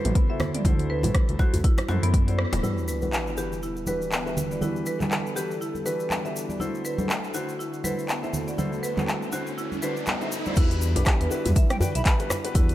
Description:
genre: afro house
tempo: 121 BPM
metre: 4/4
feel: swing 58% on 16ths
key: E minor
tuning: A4 = 440 Hz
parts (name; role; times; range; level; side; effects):
- marimba with medium hard mallets; arpeggios; 0.0-12.7 s; B3 to E5; -32 LUFS; right 1 dB; vintage 12-bit sampler grit, sidechain pumping, low-pass filter, dub echo
- felt-muted upright piano; stabs; 0.0-12.7 s; D3 to C5; -33 LUFS; left 4 dB; sidechain pumping, low-pass filter, dub echo
- smooth gliding synth bass; bass; 0.1-2.6, 10.6-12.7 s; D1 to F#2; -25 LUFS; equal; sidechain pumping
- deep house drum kit; drums; 0.1-12.7 s; crash cymbal, handclaps, hi-hat, rim click, toms; -30 LUFS; equal; none
- electronic kick drum; drums; 0.2-2.3, 10.6-12.7 s; none; -21 LUFS; equal; none
- congas; percussion; 0.4-10.5 s; none; -32 LUFS; right 2 dB; none
- djembe; percussion; 0.4-2.6, 10.6-12.7 s; none; -30 LUFS; left 1 dB; none
- warm analog pad; sustained chords; 3.0-12.7 s; D3 to B4; -36 LUFS; equal; chorus, sidechain pumping
- tube shaker; percussion; 2.6-12.7 s; none; -39 LUFS; left 2 dB; none
- sub drop and riser; sound effects; 2.6-10.6 s; none; -35 LUFS; right 1 dB; none
- bright silver concert flute; melody; 11.7-12.1 s; G5 to B5; -35 LUFS; equal; dub echo
room: light reverb, small room ambience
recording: none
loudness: -23 LUFS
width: side -14 dB against mid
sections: 0.0-2.6 A section; 2.6-10.6 B section; 10.6-12.7 C section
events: band accent 2.4; impact 2.6-4.6; filter sweep on marimba 2.6-10.6; filter sweep on felt piano 2.6-10.6; riser 8.2-10.6; drop 10.6-12.7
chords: 0.0 D7; 2.6 Em7; 6.6 D7; 10.6 Em7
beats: 0.15 | 0.65 1.15 1.64 2.14 | 2.63 3.13 3.62 4.12 | 4.62 5.11 5.61 6.11 | 6.60 7.10 7.59 8.09 | 8.58 9.08 9.58 10.07 | 10.57 11.06 11.56 12.05 | 12.55

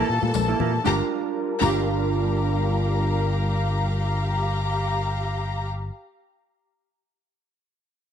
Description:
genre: disco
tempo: 118 BPM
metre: 4/4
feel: straight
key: G dorian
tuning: A4 = 440 Hz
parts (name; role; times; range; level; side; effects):
- rich studio string section; second line; 0.0-5.7 s; G4 to Bb5; -27 LUFS; left 2 dB; none
- clean electric guitar; accompaniment; 0.0-6.0 s; Bb3 to Bb4; -28 LUFS; right 15 dB; low-pass filter
- clear studio string section; sustained chords; 0.0-5.1 s; E3 to Bb4; -31 LUFS; left 2 dB; low-pass filter
- fingered electric bass; bass; 0.1-5.9 s; G1 to Bb2; -24 LUFS; equal; none
- cajon; drums; 0.1-1.8 s; none; -30 LUFS; left 4 dB; none
- congas; percussion; 0.2-1.8 s; none; -30 LUFS; left 13 dB; none
- tambourine; percussion; 0.3-1.8 s; none; -39 LUFS; left 15 dB; none
room: light reverb, studio reverb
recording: 1960s-style stereo with parts hard left and right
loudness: -22 LUFS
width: side -8 dB against mid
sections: 0.8-4.9 A section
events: none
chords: 0.0 Gm69/Bb; 0.8 Gm7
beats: 0.34 | 0.85 1.36 1.87 2.38 | 2.88 3.39 3.90 4.41

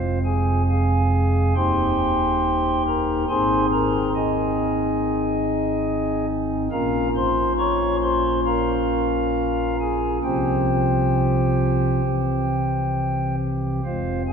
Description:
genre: classical, chorale-style piece for pipe organ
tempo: 68 BPM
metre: 4/4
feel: rubato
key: unclear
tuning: A4 = 443 Hz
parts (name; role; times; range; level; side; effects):
- pipe organ, stopped flute; solo; 0.0-14.3 s; Eb1 to Db6; -19 LUFS; equal; none
room: wet cathedral reverb, RT60 4.8 s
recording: none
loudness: -19 LUFS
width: side -6 dB against mid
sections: 0.0-14.3 A section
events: none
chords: 0.0 Fm; 1.6 Eb; 3.3 Ab; 6.7 Bbm; 10.2 Csus4; 12.1 C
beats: 0.69 1.57 2.44 | 3.30 4.15 5.01 5.87 | 6.72 7.59 8.46 9.35 | 10.24 11.15 12.05 12.95 | 13.84

